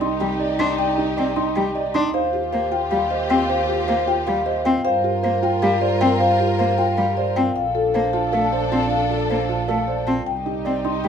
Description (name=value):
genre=classical, minimalist pattern music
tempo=310 BPM (eighths)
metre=7/8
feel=straight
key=C dorian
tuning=A4 = 442 Hz
part: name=marimba with soft mallets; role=melody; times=0.0-11.1 s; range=G4 to C6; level=-22 LUFS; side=left 7 dB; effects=none
part: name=mellow French horn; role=second line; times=0.0-11.1 s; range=D4 to G4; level=-30 LUFS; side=right 3 dB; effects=none
part: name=warm symphonic string section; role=sustained chords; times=0.0-11.1 s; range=D4 to Bb4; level=-28 LUFS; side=left 1 dB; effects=none
part: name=warm grand piano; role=arpeggios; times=0.0-11.1 s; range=Eb4 to D5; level=-24 LUFS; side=right 7 dB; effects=none
part: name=rich double bass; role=bass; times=0.0-11.1 s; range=Bb1 to G2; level=-28 LUFS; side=right 3 dB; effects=none
part: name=rich cello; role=accompaniment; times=0.2-11.1 s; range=G3 to D4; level=-25 LUFS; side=equal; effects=none
room=moderate recital hall reverb, RT60 1.4 s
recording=minimal, uncompressed stereo recording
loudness=-18 LUFS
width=side -7 dB against mid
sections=0.0-11.1 A section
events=none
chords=0.0 Cm; 2.1 Ebadd9; 4.8 Gm7; 7.6 Bbmaj7; 10.3 Cm